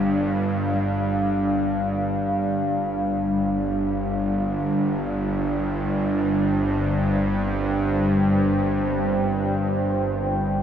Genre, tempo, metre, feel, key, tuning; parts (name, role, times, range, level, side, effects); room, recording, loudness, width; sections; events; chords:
dark ambient drone; free time; A4 = 440 Hz
deep dark ambient pad; sustained chords; 0.0-10.6 s; G3 to G5; -24 LUFS; right 1 dB; chorus, built-in reverb
gamelan-type bronze metallophone; arpeggios; 0.0-8.2 s; G3; -34 LUFS; left 2 dB
bowed-like drone; drone; 0.0-10.6 s; G1 to G2; -24 LUFS; equal; built-in reverb
wet cathedral reverb, RT60 6.5 s; cassette tape; -21 LUFS; side -8 dB against mid
0.0-10.6 A section
fade-out 9.3-10.6
0.0 G5